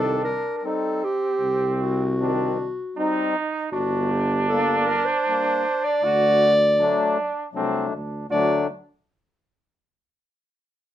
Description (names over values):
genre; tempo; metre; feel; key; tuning
klezmer; 78 BPM; 3/4; straight; D phrygian dominant; A4 = 440 Hz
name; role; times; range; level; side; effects
mellow clarinet; melody; 0.0-8.7 s; F#4 to D5; -22 LUFS; equal; none
clear trombone; second line; 0.0-8.7 s; C4 to F#4; -26 LUFS; right 4 dB; none
mellow accordion; accompaniment; 0.0-8.7 s; Eb3 to Eb4; -25 LUFS; left 4 dB; none
mellow tuba; bass; 0.0-8.7 s; G1 to D2; -27 LUFS; equal; none
room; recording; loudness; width
moderate studio ambience, RT60 0.5 s; minimal, uncompressed stereo recording; -20 LUFS; side -12 dB against mid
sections
0.0-8.3 A section; 8.3-10.6 B section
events
speeding up 0.0-10.6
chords
0.0 Cm; 3.7 Gm; 6.0 D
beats
0.63 | 1.41 2.18 2.96 | 3.73 4.50 5.27 | 6.03 6.79 7.56 | 8.32